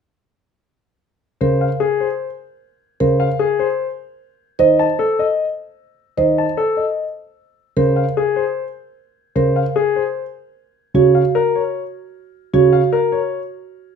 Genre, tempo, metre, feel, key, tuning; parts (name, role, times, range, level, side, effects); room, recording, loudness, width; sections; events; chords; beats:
classical, minimalist pattern music; 151 BPM; 4/4; straight; Bb minor; A4 = 440 Hz
clear concert grand piano; melody; 1.4-13.4 s; Ab4 to A5; -18 LUFS; left 7 dB
dark grand piano; accompaniment; 1.4-12.8 s; Db3 to Eb3; -19 LUFS; left 1 dB
marimba with soft mallets; arpeggios; 1.4-12.8 s; Gb4 to C5; -18 LUFS; right 10 dB
light reverb; minimal, uncompressed stereo recording; -15 LUFS; side -6 dB against mid
1.2-14.0 A section
1.2 Bbm; 4.4 Adim/Eb; 7.6 Bbm; 10.7 Dbsus4
| 1.21 1.61 2.01 2.40 | 2.80 3.20 3.60 3.99 | 4.39 4.79 5.18 5.58 | 5.98 6.38 6.78 7.17 | 7.57 7.97 8.36 8.76 | 9.16 9.56 9.95 10.35 | 10.75 11.15 11.54 11.94 | 12.34 12.73 13.13